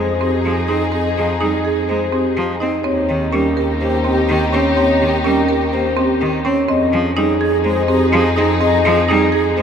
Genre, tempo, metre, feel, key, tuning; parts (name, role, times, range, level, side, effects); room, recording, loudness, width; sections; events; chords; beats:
classical, minimalist pattern music; 125 BPM; 4/4; straight; F minor; A4 = 440 Hz
vibraphone with soft mallets; melody; 0.0-9.6 s; G4 to Eb5; -20 LUFS; left 6 dB
wooden-headed alto flute; second line; 0.0-9.6 s; G4 to Ab4; -24 LUFS; right 4 dB
rich cello; accompaniment; 0.0-9.6 s; Eb3 to C4; -23 LUFS; equal
rich symphonic string section; sustained chords; 0.0-9.6 s; Eb4 to Ab4; -23 LUFS; left 3 dB
marimba with hard mallets; arpeggios; 0.0-9.6 s; C4 to Bb4; -19 LUFS; right 4 dB
rich double bass; bass; 0.0-9.6 s; Eb2 to F2; -22 LUFS; equal
wet huge ambient reverb, RT60 8.1 s; in a vast, echoing space; -14 LUFS; side -7 dB against mid
0.0-9.6 A section
0.0 Fm7; 2.8 Eb7; 6.7 Fm7
0.45 | 0.93 1.41 1.89 2.37 | 2.85 3.33 3.81 4.29 | 4.77 5.25 5.73 6.21 | 6.69 7.17 7.65 8.13 | 8.61 9.09 9.57